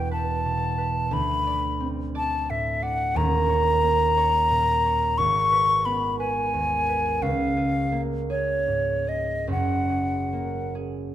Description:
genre	classical, impressionist duo for flute and harp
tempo	47-60 BPM (dotted quarters)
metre	6/8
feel	rubato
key	G# dorian from 3.2 s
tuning	A4 = 440 Hz
part	mellow hollow silver concert flute	melody	0.0-10.7 s	C#5 to C#6	-23 LUFS	left 2 dB	none
part	concert harp	accompaniment	0.0-11.1 s	D#1 to D5	-26 LUFS	right 2 dB	none
room	light reverb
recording	close, detailed microphones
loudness	-21 LUFS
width	side -12 dB against mid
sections	0.0-11.1 A section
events	none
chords	0.0 E5; 1.1 D5; 3.2 D#5; 5.2 G#m; 7.2 C#6; 9.5 F#add9

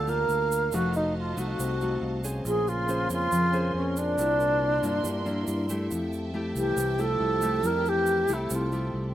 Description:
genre	bossa nova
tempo	139 BPM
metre	4/4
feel	straight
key	F major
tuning	A4 = 440 Hz
part	reedy alto flute	melody	0.0-9.1 s	Db4 to Bb4	-26 LUFS	right 1 dB	slapback echo
part	nylon-string guitar	accompaniment	0.0-9.1 s	C3 to C5	-31 LUFS	left 1 dB	none
part	warm studio string section	sustained chords	0.0-9.1 s	Gb4 to C6	-40 LUFS	right 2 dB	none
part	fingered electric bass	bass	0.0-9.1 s	F1 to G2	-32 LUFS	equal	none
part	tube shaker	percussion	0.1-8.9 s	none	-40 LUFS	right 6 dB	none
part	warm trombone	second line	2.5-9.1 s	Bb2 to G3	-39 LUFS	right 4 dB	none
room	little or no reverb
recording	recorded outdoors, with no room sound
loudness	-24 LUFS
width	side -12 dB against mid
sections	0.0-9.1 A section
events	none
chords	0.0 Gm9; 0.7 F7b9; 2.5 Bbm9; 4.2 C9; 5.9 Fmaj9

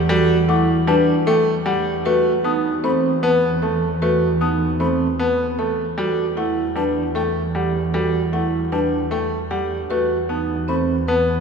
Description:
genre	classical, minimalist pattern music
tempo	153 BPM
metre	5/4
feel	straight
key	E minor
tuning	A4 = 440 Hz
part	rich symphonic double bass section	bass	0.0-11.4 s	E2	-23 LUFS	equal	none
part	marimba with medium mallets	melody	0.1-11.3 s	A4 to A5	-23 LUFS	left 7 dB	none
part	bright grand piano	accompaniment	0.1-11.3 s	G3 to B3	-25 LUFS	equal	none
part	vibraphone with soft mallets	arpeggios	0.1-11.3 s	C4 to B4	-22 LUFS	right 7 dB	none
part	mellow hollow silver concert flute	arpeggios	0.5-11.2 s	G5 to D#6	-32 LUFS	left 4 dB	none
room	wet cathedral reverb, RT60 4.4 s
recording	recorded in a church or concert hall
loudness	-17 LUFS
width	side -6 dB against mid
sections	0.0-11.4 A section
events	none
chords	0.0 Em9; 2.1 B7b9/E; 6.0 Em9; 9.9 B7b9/E

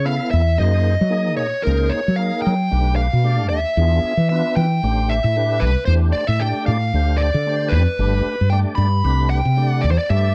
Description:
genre	electric jazz fusion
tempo	114 BPM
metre	4/4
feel	swing 56% on 16ths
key	unclear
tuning	A4 = 440 Hz
part	smooth overdriven lead guitar	melody	0.0-10.3 s	A#4 to B5	-24 LUFS	equal	none
part	tonewheel organ	accompaniment	0.0-10.3 s	A3 to E5	-29 LUFS	equal	slow rotary speaker, overdrive, chorus vibrato
part	woody fretless electric bass	bass	0.0-10.3 s	G1 to F#3	-20 LUFS	equal	subtle chorus
room	light reverb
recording	dark, warm production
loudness	-18 LUFS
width	mono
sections	0.0-10.3 A section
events	none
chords	0.0 Db7alt; 0.6 F#add9; 2.7 Bm7b5; 3.8 E7b9; 4.8 Am9; 6.9 Dm7; 8.0 Gadd9; 9.1 Cmaj7sus2

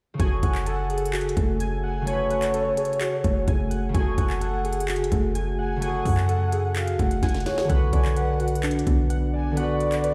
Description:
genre	hip hop, trap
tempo	128 BPM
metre	4/4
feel	half-time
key	F# minor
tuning	A4 = 440 Hz
part	concert harp	accompaniment	0.1-10.1 s	C#3 to B4	-32 LUFS	equal	low-pass filter
part	warbly lo-fi synth keys	arpeggios	0.2-10.1 s	A3 to G#5	-31 LUFS	equal	chorus, low-pass filter, tape echo
part	clean 808-style bass	bass	0.2-10.1 s	E#1 to F#2	-28 LUFS	equal	none
part	trap drum kit	drums	0.2-10.1 s	handclaps, hi-hat, kick drum, snare drum	-29 LUFS	equal	none
part	breathy flute-like synth lead	second line	0.4-10.1 s	C#5 to G#5	-31 LUFS	equal	chorus, tape echo
room	light reverb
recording	played on a big sound system in a bare room, stone room reverb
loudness	-24 LUFS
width	mono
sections	0.2-10.1 A section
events	drum fill 7.2-7.7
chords	0.2 F#madd9; 7.7 Bm

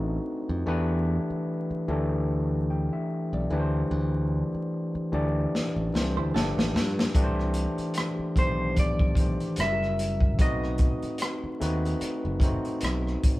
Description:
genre	R&B, neo-soul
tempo	74 BPM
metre	4/4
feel	swing 57% on 16ths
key	unclear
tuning	A4 = 441 Hz
part	overdriven tine electric piano	accompaniment	0.0-13.4 s	Eb3 to G5	-29 LUFS	left 1 dB	none
part	modern bright picked electric bass	bass	0.0-13.2 s	F#1 to G2	-29 LUFS	equal	none
part	crunchy breakbeat drum kit	drums	5.5-13.4 s	hi-hat, kick drum, rim click, snare drum	-26 LUFS	equal	none
part	hollow-body jazz guitar	second line	6.2-7.1 s	A3 to C5	-34 LUFS	right 5 dB	none
part	clean electric guitar	melody	8.4-12.8 s	C5 to E5	-31 LUFS	equal	none
room	light reverb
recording	band playing live in one room, vinyl crackle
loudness	-24 LUFS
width	side -18 dB against mid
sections	0.0-13.4 A section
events	drum fill 5.5-7.1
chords	0.0 B7b9; 0.7 Em7; 3.5 D9sus4; 6.3 G9; 7.1 Cmaj9; 9.6 F#7b9; 10.4 B7b9

